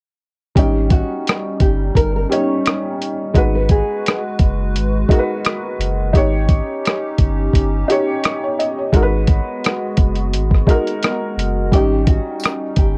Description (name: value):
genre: lo-fi hip hop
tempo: 86 BPM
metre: 4/4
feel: swing 56% on 16ths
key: unclear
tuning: A4 = 440 Hz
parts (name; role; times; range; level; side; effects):
- nylon-string guitar; melody; 0.6-5.6, 11.7-13.0 s; F#4 to C#5; -25 LUFS; equal; none
- felt-muted upright piano; accompaniment; 0.6-13.0 s; G3 to D#5; -23 LUFS; equal; cassette tape
- hollow soft pad; sustained chords; 0.6-13.0 s; G3 to B4; -29 LUFS; equal; chorus
- saturated sub bass; bass; 0.6-13.0 s; F#1 to G#1; -22 LUFS; equal; transformer saturation
- lo-fi sampler-style drum kit; drums; 0.6-12.9 s; hi-hat, kick drum, rim click; -17 LUFS; equal; none
- tambourine; percussion; 12.4-12.6 s; none; -38 LUFS; equal; none
room: light reverb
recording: worn, warbling old tape, cassette tape, warbly pitch drift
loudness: -17 LUFS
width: mono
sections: 0.6-13.0 A section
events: none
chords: 0.6 D#7; 3.3 G#m7; 6.1 D#7; 8.9 G#m7; 11.7 D#7